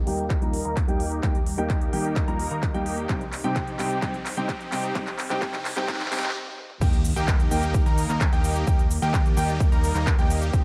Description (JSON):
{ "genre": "EDM, festival progressive house", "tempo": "129 BPM", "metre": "4/4", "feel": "straight", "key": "Eb major", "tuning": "A4 = 438 Hz", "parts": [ { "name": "lush unison pad", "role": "sustained chords", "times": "0.0-10.6 s", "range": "G3 to D5", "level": "-41 LUFS", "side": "equal", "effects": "none" }, { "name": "bright concert grand piano", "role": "arpeggios", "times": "0.0-10.6 s", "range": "G5 to Bb5", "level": "-35 LUFS", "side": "equal", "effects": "sidechain pumping, low-pass filter, dub echo" }, { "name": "supersaw chords", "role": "riff", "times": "0.0-10.6 s", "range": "Bb3 to Bb4", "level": "-33 LUFS", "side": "equal", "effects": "cassette tape, sidechain pumping, low-pass filter, dub echo" }, { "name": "fat analog bass", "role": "bass", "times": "0.0-10.6 s", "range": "C2 to Eb2", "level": "-32 LUFS", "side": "equal", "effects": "sidechain pumping" }, { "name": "riser and impact", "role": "sound effects", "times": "1.9-8.7 s", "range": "none", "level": "-38 LUFS", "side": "equal", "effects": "none" }, { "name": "felt-muted upright piano", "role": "accompaniment", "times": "0.1-6.2 s", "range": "C3 to G4", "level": "-35 LUFS", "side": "equal", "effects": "sidechain pumping, dub echo" }, { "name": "big-room dance drum kit", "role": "drums", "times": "0.1-10.6 s", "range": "crash cymbal, handclaps, hi-hat, shaker, toms", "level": "-35 LUFS", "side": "equal", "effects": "overdrive, high-pass filter on hats, high-pass filter on snare, high-pass filter on toms, high-pass filter on cymbals, high-pass filter on perc" }, { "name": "electronic kick drum", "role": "drums", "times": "0.3-10.6 s", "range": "none", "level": "-26 LUFS", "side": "equal", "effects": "overdrive" } ], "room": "light reverb", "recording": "dark, warm production, high-pass filter", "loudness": "-24 LUFS", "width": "mono", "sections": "0.0-6.8 A section; 6.8-10.6 B section", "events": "build-up 0.0-6.8; drum fill 0.0-6.3, 6.5-6.8; filter sweep on supersaw synth 0.0-6.8; filter sweep on grand piano 0.0-6.8; filter sweep 0.0-6.8; stop 6.3-6.8; drop 6.8-10.6; impact 6.8-8.7", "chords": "0.0 Eb; 3.1 Cm; 6.8 Eb" }